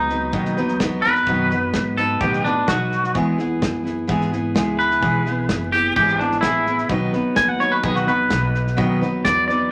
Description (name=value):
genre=honky-tonk and classic country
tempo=128 BPM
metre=4/4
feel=straight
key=E major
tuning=A4 = 440 Hz
part: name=twangy electric guitar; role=melody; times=0.0-9.7 s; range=D4 to G#5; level=-22 LUFS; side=equal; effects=none
part: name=picked steel-string acoustic guitar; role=accompaniment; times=0.0-9.7 s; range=B2 to B4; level=-24 LUFS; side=equal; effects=none
part: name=upright bass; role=bass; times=0.0-9.7 s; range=F#1 to B2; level=-31 LUFS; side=equal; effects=none
part: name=natural country drum kit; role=drums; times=0.1-9.5 s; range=hi-hat, kick drum, snare drum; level=-29 LUFS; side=equal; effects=none
room=wet club reverb, RT60 0.7 s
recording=vinyl crackle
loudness=-20 LUFS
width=mono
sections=0.0-9.7 A section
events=clean electric guitar solo 0.0-9.7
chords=0.0 B; 3.1 E; 6.9 B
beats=0.34 0.81 | 1.27 1.74 2.21 2.68 | 3.15 3.62 4.09 4.56 | 5.03 5.49 5.96 6.43 | 6.90 7.37 7.84 8.31 | 8.78 9.25